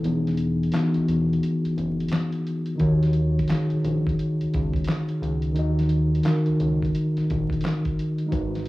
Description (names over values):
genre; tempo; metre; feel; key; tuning
lo-fi hip hop; 87 BPM; 4/4; swing 64% on 16ths; unclear; A4 = 438 Hz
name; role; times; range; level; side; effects
mellow tine electric piano; accompaniment; 0.0-8.7 s; D#3 to D#5; -23 LUFS; equal; fast stereo tremolo, low-pass filter, cassette tape
fat analog bass; bass; 0.0-8.7 s; E1 to D#2; -26 LUFS; equal; none
lo-fi sampler-style drum kit; drums; 0.0-8.7 s; handclaps, hi-hat, kick drum, snare drum; -29 LUFS; equal; cassette tape
room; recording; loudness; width
little or no reverb; home recording on cassette, vinyl crackle, studio reverb; -21 LUFS; side -18 dB against mid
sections
0.0-8.7 A section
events
break 0.0-2.8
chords
0.0 Emaj7; 2.8 D#m7